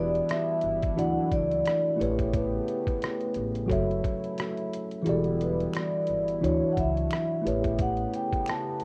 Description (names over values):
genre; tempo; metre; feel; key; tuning
lo-fi hip hop; 88 BPM; 4/4; swing 57% on 16ths; unclear; A4 = 440 Hz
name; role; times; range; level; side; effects
vibraphone with soft mallets; melody; 0.0-8.8 s; G#4 to A5; -33 LUFS; equal; low-pass filter
tine electric piano; accompaniment; 0.0-8.8 s; E3 to E5; -32 LUFS; equal; cassette tape, low-pass filter
warm analog pad; sustained chords; 0.0-8.8 s; C#3 to C#5; -39 LUFS; equal; chorus, low-pass filter
upright bass; bass; 0.0-8.8 s; E1 to D2; -36 LUFS; equal; none
trip hop sampler-style drum kit; drums; 0.2-8.8 s; hi-hat, kick drum, rim click; -35 LUFS; equal; none
finger snap; percussion; 5.7-8.6 s; none; -48 LUFS; equal; none
room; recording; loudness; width
light reverb, studio ambience; rough home demo mix, cassette tape; -28 LUFS; mono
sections
0.0-8.8 A section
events
kick muted 5.1-6.4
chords
0.0 Em7; 1.0 Dmaj9; 2.0 A9; 3.7 F#m7; 5.1 Em7; 6.4 Dmaj9; 7.4 A9